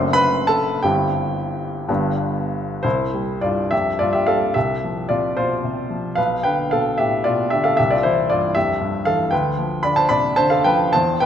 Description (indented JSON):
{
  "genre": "classical, romantic character piece for solo piano",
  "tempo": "56-79 BPM (dotted quarters)",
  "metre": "6/8",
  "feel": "rubato",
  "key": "C major",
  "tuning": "A4 = 440 Hz",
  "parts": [
    { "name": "clear baby grand piano", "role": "solo", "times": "0.0-11.3 s", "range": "F#1 to C6", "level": "-17 LUFS", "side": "equal", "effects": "none" }
  ],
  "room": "moderate concert hall reverb, RT60 1.9 s",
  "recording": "none",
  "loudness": "-17 LUFS",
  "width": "side -9 dB against mid",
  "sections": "0.0-2.8 A section; 2.8-11.3 B section",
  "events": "none",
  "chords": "0.0 D7/F#; 0.8 C/G; 1.9 G; 2.8 C; 4.6 Cadd11; 6.2 G7/B; 7.8 C; 9.3 G7/D"
}